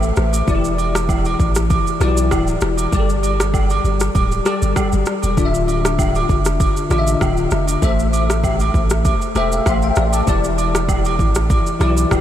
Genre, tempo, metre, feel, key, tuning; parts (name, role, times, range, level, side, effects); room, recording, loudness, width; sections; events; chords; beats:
afrobeats; 98 BPM; 4/4; swing 55% on 16ths; A4 = 441 Hz
bell-like tine electric piano; accompaniment; 0.0-12.2 s; D3 to C6; -20 LUFS; left 4 dB; ensemble chorus
punchy sub bass; bass; 0.0-12.2 s; D1 to B1; -19 LUFS; equal
afro-pop drum kit; drums; 0.0-12.2 s; kick drum, rim click, shaker; -20 LUFS; equal
downlifter and riser; sound effects; 0.0-0.5, 11.6-12.2 s; barely audible
agogo bells and woodblock; percussion; 0.3-12.2 s; -25 LUFS; right 6 dB
moderate huge ambient reverb, RT60 7.5 s; dreamy mix soaked in reverb; -15 LUFS; side -11 dB against mid
0.0-12.2 A section
tine electric piano fill 9.0-10.3
0.5 Em7; 2.9 Gsus2; 5.4 Dmadd9; 7.8 Am; 10.3 Em7
| 0.48 1.09 1.70 2.31 | 2.93 3.54 4.15 4.76 | 5.38 5.99 6.60 7.21 | 7.83 8.44 9.05 9.66 | 10.27 10.89 11.50 12.11